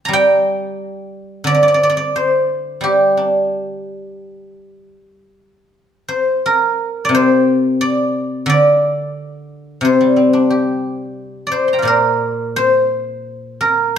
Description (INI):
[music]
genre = chinese traditional, Chinese solo plucked strings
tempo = 87 BPM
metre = 4/4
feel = rubato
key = G yu mode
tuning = A4 = 440 Hz
[part]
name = guzheng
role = solo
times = 0.0-14.0 s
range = Bb2 to C6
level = -14 LUFS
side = equal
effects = none
[sound]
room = moderate recital hall reverb, RT60 1.3 s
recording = none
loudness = -13 LUFS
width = side -9 dB against mid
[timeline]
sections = 0.0-5.7 A section; 5.7-14.0 B section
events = none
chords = none